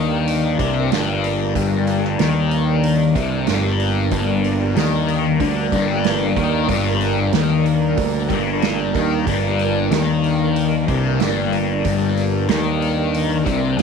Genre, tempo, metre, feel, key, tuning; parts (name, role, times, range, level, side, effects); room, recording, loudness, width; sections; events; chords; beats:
psychedelic rock; 93 BPM; 4/4; straight; G minor; A4 = 439 Hz
dark chamber string section; sustained chords; 0.0-13.8 s; G3 to Bb4; -25 LUFS; right 14 dB
thick fuzz guitar; riff; 0.0-13.8 s; G2 to Eb3; -20 LUFS; left 8 dB; distortion, phaser
fuzz picked electric bass; bass; 0.0-13.8 s; G1 to Eb2; -22 LUFS; right 2 dB; overdrive
pedal harmonium; drone; 0.0-13.8 s; G2 to D4; -28 LUFS; equal
soft-mallet drum kit; drums; 0.3-13.8 s; hi-hat, kick drum, snare drum; -25 LUFS; right 8 dB
light reverb, small room ambience; 1960s-style stereo with parts hard left and right; -16 LUFS; side -6 dB against mid
0.0-13.8 A section
0.0 Gm
0.27 0.91 | 1.55 2.19 2.83 3.48 | 4.12 4.76 5.41 6.05 | 6.69 7.33 7.98 8.62 | 9.27 9.91 10.56 11.20 | 11.85 12.49 13.14 13.79